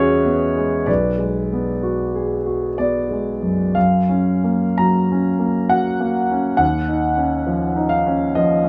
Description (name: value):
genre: classical, impressionist solo piano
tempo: 56-69 BPM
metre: 3/4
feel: rubato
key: F# major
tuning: A4 = 439 Hz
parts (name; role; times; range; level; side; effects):
- clear concert grand piano; solo; 0.0-8.7 s; B1 to A#5; -19 LUFS; equal; none
room: light reverb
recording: close, detailed microphones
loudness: -19 LUFS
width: mono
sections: 0.0-3.8 A section; 3.8-8.7 B section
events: none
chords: 0.0 E69; 0.9 Bm6; 3.8 F#maj7; 6.6 D#m9